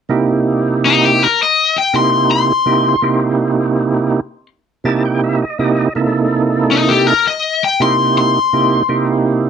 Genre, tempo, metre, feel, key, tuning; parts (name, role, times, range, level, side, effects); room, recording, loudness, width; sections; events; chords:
blues; 82 BPM; 4/4; straight; A4 = 440 Hz
percussive tonewheel organ; accompaniment; 0.1-9.5 s; C3 to A5; -14 LUFS; right 4 dB; slow rotary speaker, overdrive
cranked stack guitar; melody; 0.9-9.5 s; D#4 to C6; -13 LUFS; left 5 dB; overdrive
light reverb; dry, close 1970s-style studio recording; -12 LUFS; side -7 dB against mid
0.1-9.5 A section
tonewheel organ fill 4.5-6.0
0.1 C7#9